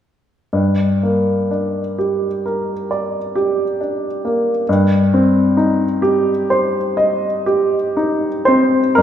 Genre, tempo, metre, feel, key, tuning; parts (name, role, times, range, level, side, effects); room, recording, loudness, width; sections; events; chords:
classical, romantic nocturne for solo piano; 38-46 BPM (dotted quarters); 9/8; rubato; G minor; A4 = 440 Hz
warm upright piano; solo; 0.5-9.0 s; G2 to Eb5; -14 LUFS; equal
wet recital hall reverb, RT60 1.6 s; heard from further back in the room; -15 LUFS; side -10 dB against mid
0.5-9.0 A section
0.5 Gm; 4.7 Cm/G